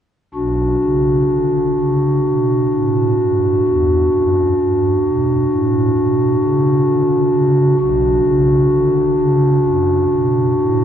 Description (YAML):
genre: classical, chorale-style piece for pipe organ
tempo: 64 BPM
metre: 4/4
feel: rubato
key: B minor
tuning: A4 = 439 Hz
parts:
  - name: pipe organ, stopped flute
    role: solo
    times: 0.3-10.8 s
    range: B1 to F#4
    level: -13 LUFS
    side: equal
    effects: none
room: wet cathedral reverb, RT60 5.2 s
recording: worn, warbling old tape, cassette tape, warbly pitch drift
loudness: -13 LUFS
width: side -9 dB against mid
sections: 0.3-10.8 A section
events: none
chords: 0.3 Bm